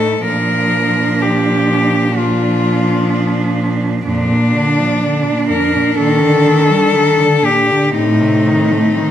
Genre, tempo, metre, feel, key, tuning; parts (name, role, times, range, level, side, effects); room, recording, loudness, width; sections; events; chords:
classical, lyrical piece for cello ensemble; 62 BPM; 4/4; rubato; A4 = 441 Hz
rich cello; melody; 0.0-9.1 s; D4 to Bb4; -15 LUFS; left 4 dB
warm cello; second line; 0.0-9.1 s; C4 to Eb4; -19 LUFS; right 5 dB
rich cello; accompaniment; 0.0-9.1 s; F2 to A3; -19 LUFS; left 1 dB
rich cello; bass; 0.0-8.8 s; A2 to Eb3; -18 LUFS; right 2 dB
wet recital hall reverb, RT60 1.8 s; -11 LUFS; side -10 dB against mid
0.0-9.1 A section
0.3 Bb; 4.1 Bb/F; 6.0 Ebmaj7/Bb; 8.0 Adim